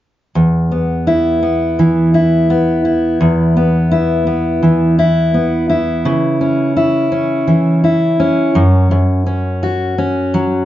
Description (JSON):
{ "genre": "pop", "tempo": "84 BPM", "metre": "4/4", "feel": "swing 55% on 16ths", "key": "unclear", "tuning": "A4 = 440 Hz", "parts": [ { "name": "fingerpicked steel-string acoustic guitar", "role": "accompaniment", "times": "0.4-10.7 s", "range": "E2 to F#4", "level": "-11 LUFS", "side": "equal", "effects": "none" } ], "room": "wet small room reverb, RT60 0.6 s", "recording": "nothing above 7.5 kHz", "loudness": "-11 LUFS", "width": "side -13 dB against mid", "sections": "0.4-10.7 A section", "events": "none", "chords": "0.4 E5; 6.1 C#m; 8.5 F#5" }